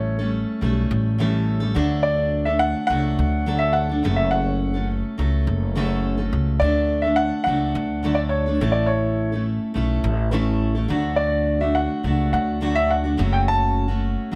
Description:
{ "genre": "acoustic pop", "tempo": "105 BPM", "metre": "4/4", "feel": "straight", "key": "D major", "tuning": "A4 = 440 Hz", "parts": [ { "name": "warm upright piano", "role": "melody", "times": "0.0-14.0 s", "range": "C#5 to A5", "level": "-25 LUFS", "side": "equal", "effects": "plate reverb" }, { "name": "fingerpicked steel-string acoustic guitar", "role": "accompaniment", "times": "0.0-14.4 s", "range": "F#2 to A4", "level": "-26 LUFS", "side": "equal", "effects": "plate reverb" }, { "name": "upright bass", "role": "bass", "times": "0.0-14.4 s", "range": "F#1 to D2", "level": "-26 LUFS", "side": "equal", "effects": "none" } ], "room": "moderate studio reverb, RT60 0.8 s", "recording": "none", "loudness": "-21 LUFS", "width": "mono", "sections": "0.0-14.4 A section", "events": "none", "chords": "0.0 A7; 1.8 D; 4.0 F#m; 6.6 D; 8.6 A; 10.9 D; 13.2 F#m", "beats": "0.33 0.91 1.48 | 2.05 2.62 3.19 3.76 | 4.33 4.90 5.47 6.05 | 6.62 7.19 7.76 8.33 | 8.90 9.47 10.04 10.61 | 11.19 11.76 12.33 12.90 | 13.47 14.04" }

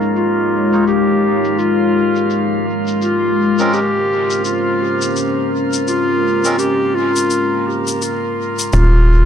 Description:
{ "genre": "ambient dub", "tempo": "84 BPM", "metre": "4/4", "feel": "swing 60% on 16ths", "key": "Eb mixolydian", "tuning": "A4 = 440 Hz", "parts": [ { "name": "deep dark ambient pad", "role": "sustained chords", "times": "0.0-9.3 s", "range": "Ab3 to Db5", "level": "-18 LUFS", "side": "left 2 dB", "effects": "chorus, built-in reverb, vintage 12-bit sampler grit" }, { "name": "shaker", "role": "drums", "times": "0.0-8.9 s", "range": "none", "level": "-25 LUFS", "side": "left 5 dB", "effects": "dub echo" }, { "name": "drifting glass-harmonics texture", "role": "texture", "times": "0.0-8.8 s", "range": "Bb3 to Bb4", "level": "-25 LUFS", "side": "right 2 dB", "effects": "chorus, built-in reverb" }, { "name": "warm clarinet", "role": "melody", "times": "0.2-9.3 s", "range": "F4 to G4", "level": "-18 LUFS", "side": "left 1 dB", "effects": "dub echo" }, { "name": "melodica", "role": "stabs", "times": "0.7-6.6 s", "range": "Ab3 to Db5", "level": "-24 LUFS", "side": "right 2 dB", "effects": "dub echo" }, { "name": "round analog bass", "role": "bass", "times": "8.7-9.3 s", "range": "Eb1", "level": "-10 LUFS", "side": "equal", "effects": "none" }, { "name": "electronic kick drum", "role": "drums", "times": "8.7-8.9 s", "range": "none", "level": "-22 LUFS", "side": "equal", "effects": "overdrive" } ], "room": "moderate spring reverb, RT60 2.1 s", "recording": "low-pass filter", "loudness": "-14 LUFS", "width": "side -9 dB against mid", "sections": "0.0-8.7 A section", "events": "filter sweep 0.0-8.7", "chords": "0.0 Eb9sus4; 3.0 Bbm9; 8.7 Eb9sus4", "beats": "| 0.16 0.88 1.59 2.31 | 3.02 3.73 4.45 5.16 | 5.88 6.59 7.31 8.02 | 8.73" }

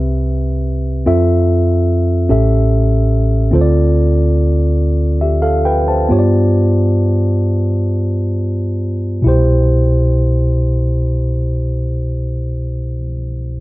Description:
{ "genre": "gospel", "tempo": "32-49 BPM (dotted quarters)", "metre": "6/8", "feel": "straight", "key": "C major", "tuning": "A4 = 440 Hz", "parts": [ { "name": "mellow tine electric piano", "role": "solo", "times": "0.0-13.6 s", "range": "A1 to A5", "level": "-12 LUFS", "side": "equal", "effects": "none" } ], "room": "light reverb", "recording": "dry, close 1970s-style studio recording", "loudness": "-13 LUFS", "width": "side -18 dB against mid", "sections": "0.0-9.3 A section; 9.3-13.0 B section", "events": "slowing down 3.5-9.3", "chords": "0.0 Cmaj7; 1.1 Fmaj7; 2.3 A7; 3.5 Dm7; 6.1 G7; 9.3 Cmaj7", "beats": "| 1.07 2.29 | 3.52 4.76 | 6.09 7.55 | 9.26 11.11" }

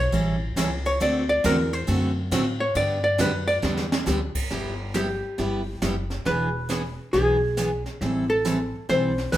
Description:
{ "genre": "country, western swing", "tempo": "137 BPM", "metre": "4/4", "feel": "swing 65% on 8ths", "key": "G major", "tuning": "A4 = 440 Hz", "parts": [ { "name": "archtop guitar, miked and amplified", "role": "melody", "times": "0.0-9.4 s", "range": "G4 to D5", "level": "-24 LUFS", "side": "equal", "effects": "none" }, { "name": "upright bass", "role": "bass", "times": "0.0-9.4 s", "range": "E1 to A2", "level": "-28 LUFS", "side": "equal", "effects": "none" }, { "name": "picked steel-string acoustic guitar", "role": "accompaniment", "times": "0.1-9.4 s", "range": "D3 to A4", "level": "-27 LUFS", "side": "right 1 dB", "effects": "none" }, { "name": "jazz brush drum kit", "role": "drums", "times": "0.1-9.4 s", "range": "brushed snare drum, crash cymbal, hi-hat, kick drum, ride cymbal, snare drum", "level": "-31 LUFS", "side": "right 1 dB", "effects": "none" } ], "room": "wet large studio reverb, RT60 0.9 s", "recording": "band playing live in one room", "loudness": "-22 LUFS", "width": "side -13 dB against mid", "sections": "0.0-4.5 A section; 4.5-9.4 B section", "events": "hollow-body jazz guitar solo 0.0-4.5; drum fill 3.6-4.1", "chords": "0.0 A7; 1.0 D7; 2.8 G; 4.5 G6; 6.3 E7; 8.0 Am7", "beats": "0.13 0.57 | 1.01 1.44 1.88 2.32 | 2.76 3.19 3.63 4.07 | 4.51 4.95 5.39 5.82 | 6.26 6.70 7.14 7.58 | 8.02 8.45 8.89 9.33" }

